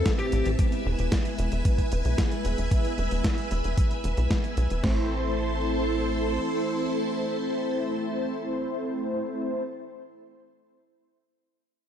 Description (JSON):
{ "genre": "italo disco", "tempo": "113 BPM", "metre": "4/4", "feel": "straight", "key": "A minor", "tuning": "A4 = 439 Hz", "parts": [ { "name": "biting lead guitar", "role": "melody", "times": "0.0-0.5 s", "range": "G4", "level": "-32 LUFS", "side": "left 4 dB", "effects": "overdrive, vintage 12-bit sampler grit, ping-pong delay" }, { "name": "string machine, full ensemble", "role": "sustained chords", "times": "0.0-9.6 s", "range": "C4 to E6", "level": "-31 LUFS", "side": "equal", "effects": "ensemble chorus" }, { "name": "mellow synth brass", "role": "stabs", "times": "0.0-9.6 s", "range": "A2 to C5", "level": "-31 LUFS", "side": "left 1 dB", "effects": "chorus, ping-pong delay" }, { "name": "tight sequencer bass", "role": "bass", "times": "0.0-6.4 s", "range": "E1 to B1", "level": "-27 LUFS", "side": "equal", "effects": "tube saturation" }, { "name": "dusty soul sampler-style drum kit", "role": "drums", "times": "0.1-5.0 s", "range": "crash cymbal, kick drum, snare drum", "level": "-25 LUFS", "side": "equal", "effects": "overdrive, studio reverb" }, { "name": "dusty soul sampler-style drum kit", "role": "drums", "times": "0.1-4.8 s", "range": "hi-hat, snare drum", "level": "-33 LUFS", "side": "equal", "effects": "overdrive, studio reverb" } ], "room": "light reverb", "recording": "dark, warm production", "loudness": "-24 LUFS", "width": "side -9 dB against mid", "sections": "0.0-4.8 A section; 4.8-9.1 B section", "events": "filter sweep on analog polysynth 0.0-4.8", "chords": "0.0 Am; 0.6 E; 4.8 Am" }